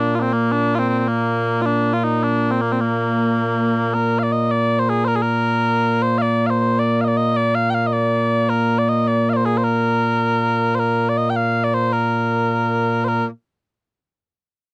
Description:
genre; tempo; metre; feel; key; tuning
scottish traditional, Scottish pipe music; 105 BPM (dotted quarters); 6/8; straight; Bb major; A4 = 439 Hz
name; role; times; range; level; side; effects
mellow small bagpipes; solo; 0.0-13.3 s; Bb2 to G5; -19 LUFS; equal; none
room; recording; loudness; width
light reverb; dry, close 1970s-style studio recording; -19 LUFS; mono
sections
0.0-3.9 A section; 3.9-13.1 B section; 13.1-14.2 C section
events
none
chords
none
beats
| 0.51 1.08 | 1.65 2.22 | 2.79 3.37 | 3.94 4.51 | 5.08 5.65 | 6.22 6.79 | 7.37 7.94 | 8.51 9.08 | 9.65 10.22 | 10.79 11.37 | 11.94 12.51 | 13.08

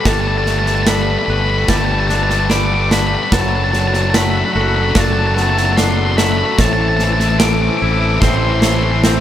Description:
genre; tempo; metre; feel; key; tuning
post-rock; 74 BPM; 4/4; straight; G major; A4 = 441 Hz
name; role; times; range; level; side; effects
octave-fuzz lead guitar; melody; 0.0-9.0 s; A5 to D6; -19 LUFS; right 1 dB; distortion, slapback echo
hand-pumped harmonium; sustained chords; 0.0-9.2 s; B3 to F#5; -28 LUFS; right 4 dB; none
electric guitar through a small old amp; arpeggios; 0.0-9.2 s; B3 to C5; -26 LUFS; right 3 dB; spring reverb, slapback echo
twangy electric guitar; arpeggios; 0.0-9.2 s; A2 to B4; -24 LUFS; left 3 dB; slapback echo
distorted electric guitar; riff; 0.0-9.2 s; A2 to A3; -22 LUFS; left 10 dB; overdrive
fuzz fingered electric bass; bass; 0.1-9.2 s; F#1 to A1; -18 LUFS; equal; overdrive
big rock drum kit; drums; 0.1-9.2 s; kick drum, snare drum; -18 LUFS; right 1 dB; none
room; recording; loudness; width
light reverb, small room ambience; none; -12 LUFS; side -11 dB against mid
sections
0.0-9.2 A section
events
build-up 0.0-9.2; drum fill 8.2-9.2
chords
0.0 Gadd9; 3.3 D/F#; 6.6 Am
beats
| 0.07 0.89 1.70 2.52 | 3.33 4.15 4.96 5.78 | 6.59 7.41 8.22 9.04

